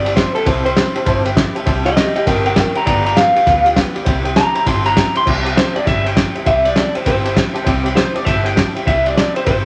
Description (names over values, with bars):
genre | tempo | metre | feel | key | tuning
rockabilly | 200 BPM | 4/4 | swing 63% on 8ths | C major | A4 = 440 Hz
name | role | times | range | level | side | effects
electric guitar through a small old amp | melody | 0.0-9.7 s | G4 to C6 | -19 LUFS | equal | none
picked steel-string acoustic guitar | accompaniment | 0.0-9.7 s | G2 to G4 | -27 LUFS | equal | none
upright bass | bass | 0.0-9.7 s | G1 to D2 | -25 LUFS | equal | none
honky-tonk upright piano | accompaniment | 0.1-9.6 s | B4 to A5 | -30 LUFS | equal | none
cloth-damped thuddy drum kit | drums | 0.1-9.6 s | crash cymbal, kick drum, ride cymbal, snare drum | -19 LUFS | equal | none
room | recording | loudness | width
moderate club reverb, RT60 0.5 s | none | -15 LUFS | mono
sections
0.0-5.3 A section; 5.3-9.7 A section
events
clean electric guitar solo 0.0-9.7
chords
0.0 C; 2.9 G7; 4.1 C